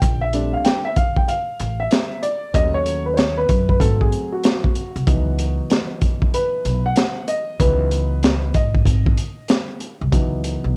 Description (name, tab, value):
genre	hip hop, jazz-hop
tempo	95 BPM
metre	4/4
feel	swing 64% on 16ths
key	unclear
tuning	A4 = 440 Hz
part	dark upright piano	accompaniment	0.0-10.8 s	E3 to G5	-25 LUFS	equal	cassette tape
part	upright bass	bass	0.0-10.8 s	G#1 to G#2	-24 LUFS	equal	none
part	crunchy breakbeat drum kit	drums	0.0-10.6 s	hi-hat, kick drum, snare drum	-21 LUFS	equal	cassette tape
room	light reverb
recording	home recording on cassette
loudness	-19 LUFS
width	mono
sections	0.0-10.1 A section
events	upright piano solo 0.0-10.1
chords	0.0 A#maj13; 2.5 D#m7b5; 3.8 G#7b9; 5.1 C#m11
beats	| 0.02 0.65 1.28 1.91 | 2.54 3.18 3.81 4.44 | 5.07 5.70 6.33 6.96 | 7.60 8.23 8.86 9.49 | 10.12 10.76